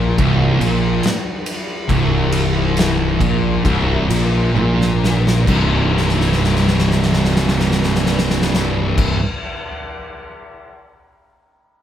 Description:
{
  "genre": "stoner and doom metal",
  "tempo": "64-71 BPM",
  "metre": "4/4",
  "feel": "straight",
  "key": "C minor",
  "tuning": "A4 = 440 Hz",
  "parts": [
    { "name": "thick fuzz guitar", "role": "riff", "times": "0.0-9.2 s", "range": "C2 to C3", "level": "-22 LUFS", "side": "left 5 dB", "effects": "distortion" },
    { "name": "thick fuzz guitar", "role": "riff", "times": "0.0-9.2 s", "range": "C2 to C3", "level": "-20 LUFS", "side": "right 6 dB", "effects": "distortion" },
    { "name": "thick fuzz guitar", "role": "riff", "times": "0.0-9.2 s", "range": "C2 to Eb4", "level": "-22 LUFS", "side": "equal", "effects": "distortion" },
    { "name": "fuzz fingered electric bass", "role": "bass", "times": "0.0-9.1 s", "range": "C1 to Bb1", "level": "-20 LUFS", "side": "left 1 dB", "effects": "overdrive" },
    { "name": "oversized low-tuned drum kit", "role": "drums", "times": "0.2-10.7 s", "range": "crash cymbal, kick drum, ride cymbal, snare drum, toms", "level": "-21 LUFS", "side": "left 1 dB", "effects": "none" }
  ],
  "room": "moderate studio reverb, RT60 0.6 s",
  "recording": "band playing live in one room",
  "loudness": "-14 LUFS",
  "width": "side -10 dB against mid",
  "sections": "0.0-5.5 A section; 5.5-9.2 B section",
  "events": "slowing down 0.0-5.5; drum fill 4.5-5.5, 5.9-9.0",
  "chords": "0.0 Bbsus2/C; 5.5 Cm",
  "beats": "0.19 1.03 | 1.89 2.76 3.64 4.55 | 5.47 6.41 7.34 8.27"
}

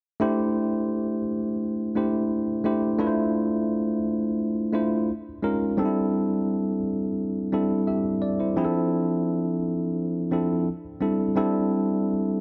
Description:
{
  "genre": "soul",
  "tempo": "86 BPM",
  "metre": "4/4",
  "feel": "straight",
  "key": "C major",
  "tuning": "A4 = 438 Hz",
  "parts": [
    { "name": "tine electric piano", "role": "solo", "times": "0.2-12.4 s", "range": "F3 to E5", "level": "-25 LUFS", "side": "equal", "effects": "none" }
  ],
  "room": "light reverb",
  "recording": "none",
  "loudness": "-25 LUFS",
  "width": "mono",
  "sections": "0.2-11.4 A section; 11.4-12.4 B section",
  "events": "none",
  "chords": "0.2 C6; 3.0 Dm7; 5.1 Db6; 5.8 C6; 8.6 Dm7; 10.7 C69",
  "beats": "| 0.22 0.92 1.61 2.31 | 3.01 3.70 4.40 5.09 | 5.79 6.49 7.18 7.88 | 8.58 9.27 9.97 10.67 | 11.37 12.06"
}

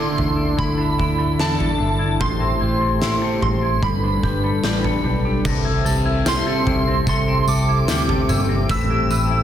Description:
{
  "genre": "dream pop",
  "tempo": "74 BPM",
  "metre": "4/4",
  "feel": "straight",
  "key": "C major",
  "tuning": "A4 = 443 Hz",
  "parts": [
    { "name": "shimmering bell with halo", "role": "melody", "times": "0.0-9.4 s", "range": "A5 to E6", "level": "-24 LUFS", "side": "right 2 dB", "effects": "ensemble chorus, phaser, tape echo" },
    { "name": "warm analog pad", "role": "sustained chords", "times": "0.0-9.4 s", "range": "D3 to E5", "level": "-24 LUFS", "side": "equal", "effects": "chorus" },
    { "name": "electric guitar with an envelope filter", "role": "arpeggios", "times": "0.0-9.4 s", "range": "A2 to B4", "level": "-25 LUFS", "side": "left 4 dB", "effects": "wide subtle chorus, tape echo" },
    { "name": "vintage muted picked electric bass", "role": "bass", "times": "0.2-9.4 s", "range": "G1 to E2", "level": "-23 LUFS", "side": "equal", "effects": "none" },
    { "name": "oversized low-tuned drum kit", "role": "drums", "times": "0.2-9.3 s", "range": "crash cymbal, kick drum, snare drum, tambourine, toms", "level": "-23 LUFS", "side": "equal", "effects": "none" }
  ],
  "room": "light reverb, small room ambience",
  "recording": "dense, heavily limited modern master",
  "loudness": "-17 LUFS",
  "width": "side -10 dB against mid",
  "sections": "0.0-5.4 A section; 5.4-9.4 B section",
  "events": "none",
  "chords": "0.0 Dsus2; 2.2 Am7; 3.8 Gadd9; 5.4 C6; 8.7 Am9",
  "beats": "0.58 1.39 | 2.20 3.02 3.83 4.64 | 5.45 6.26 7.07 7.88 | 8.69"
}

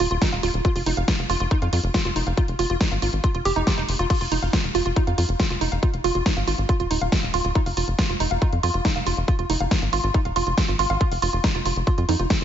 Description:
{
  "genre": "psychedelic trance",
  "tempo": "139 BPM",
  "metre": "4/4",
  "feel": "straight",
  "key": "unclear",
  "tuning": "A4 = 441 Hz",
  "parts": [
    { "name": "woody wave-folded pluck", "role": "riff", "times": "0.0-12.4 s", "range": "Eb4 to F5", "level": "-25 LUFS", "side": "right 3 dB", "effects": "chorus, auto-pan, sidechain pumping, tape echo" },
    { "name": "tight sequencer bass", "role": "bass", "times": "0.0-12.4 s", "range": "Eb1 to F2", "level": "-25 LUFS", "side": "left 1 dB", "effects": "none" },
    { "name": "big-room dance drum kit", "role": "drums", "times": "0.0-12.4 s", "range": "crash cymbal, hi-hat, snare drum", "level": "-27 LUFS", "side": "equal", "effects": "none" },
    { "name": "electronic kick drum", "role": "drums", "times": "0.2-12.4 s", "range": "none", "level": "-23 LUFS", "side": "equal", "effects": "none" }
  ],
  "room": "moderate lush hall reverb, RT60 1.6 s, digital ambience",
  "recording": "dreamy mix soaked in reverb, nothing above 7.7 kHz",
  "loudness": "-20 LUFS",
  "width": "side -10 dB against mid",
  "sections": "0.0-12.4 A section",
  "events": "none",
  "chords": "0.0 Ebsus2",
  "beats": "0.22 | 0.65 1.08 1.51 1.94 | 2.37 2.81 3.24 3.67 | 4.10 4.53 4.96 5.40 | 5.83 6.26 6.69 7.12 | 7.55 7.99 8.42 8.85 | 9.28 9.71 10.14 10.58 | 11.01 11.44 11.87 12.30"
}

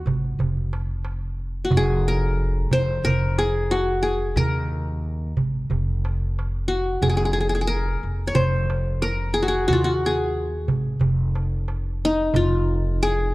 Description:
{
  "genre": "Arabic maqam ensemble",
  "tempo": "90 BPM",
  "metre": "4/4",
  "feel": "straight",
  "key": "F maqam kurd",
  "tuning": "A4 = 442 Hz",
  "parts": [
    { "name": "qanun", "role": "melody", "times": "0.0-13.3 s", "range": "Eb4 to Db5", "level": "-23 LUFS", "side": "left 1 dB", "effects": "none" },
    { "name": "upright bass", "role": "bass", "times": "0.1-13.3 s", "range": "F1 to Eb2", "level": "-25 LUFS", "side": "equal", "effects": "none" },
    { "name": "darbuka", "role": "percussion", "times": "0.1-12.6 s", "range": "none", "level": "-25 LUFS", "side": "right 2 dB", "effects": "none" }
  ],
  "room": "moderate recital hall reverb, RT60 1.8 s",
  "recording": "dark, warm production",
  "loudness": "-20 LUFS",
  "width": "side -19 dB against mid",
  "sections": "0.0-13.3 A section",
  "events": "none",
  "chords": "none",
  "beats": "0.38 1.04 | 1.71 2.37 3.04 3.70 | 4.36 5.03 5.69 6.36 | 7.02 7.68 8.35 9.02 | 9.68 10.35 11.01 11.68 | 12.35 13.01"
}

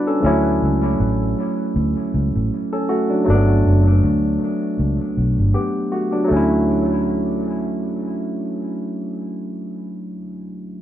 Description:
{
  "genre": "lovers rock reggae",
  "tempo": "79 BPM",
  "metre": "4/4",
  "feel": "swing 55% on 16ths",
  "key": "D major",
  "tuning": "A4 = 440 Hz",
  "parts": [
    { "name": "barky tine electric piano", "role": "accompaniment", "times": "0.0-10.8 s", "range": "F3 to D5", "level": "-20 LUFS", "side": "equal", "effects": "overdrive, tape echo" },
    { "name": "vintage muted fingered electric bass", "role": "bass", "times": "0.2-10.1 s", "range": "F#1 to D2", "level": "-18 LUFS", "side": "equal", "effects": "none" }
  ],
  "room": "wet studio reverb, RT60 0.7 s",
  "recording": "band playing live in one room",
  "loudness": "-17 LUFS",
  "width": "side -12 dB against mid",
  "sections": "0.2-6.3 A section; 6.3-9.3 B section",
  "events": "none",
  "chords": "0.2 Dmaj7; 3.3 Gmaj7; 6.3 Dmaj7",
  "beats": "| 0.23 0.98 1.74 2.50 | 3.26 4.02 4.78 5.54 | 6.30 7.06 7.82 8.58"
}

